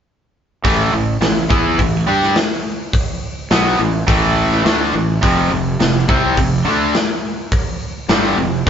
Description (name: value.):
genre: hard rock.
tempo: 105 BPM.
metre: 4/4.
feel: straight.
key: A minor.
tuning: A4 = 440 Hz.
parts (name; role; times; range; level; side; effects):
overdriven semi-hollow guitar; riff; 0.6-8.7 s; F2 to G4; -19 LUFS; left 5 dB; none.
tight distorted guitar; riff; 0.6-8.7 s; F2 to G4; -18 LUFS; right 5 dB; distortion.
fuzz fingered electric bass; bass; 0.6-8.7 s; F1 to G2; -21 LUFS; equal; overdrive.
big rock drum kit; drums; 0.6-8.7 s; hi-hat, kick drum, snare drum; -18 LUFS; equal; none.
room: moderate studio reverb, RT60 0.9 s.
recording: band playing live in one room, nothing above 7.6 kHz.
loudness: -14 LUFS.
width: side -8 dB against mid.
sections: 0.6-8.7 A section.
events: none.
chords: 0.6 A5; 5.2 F5.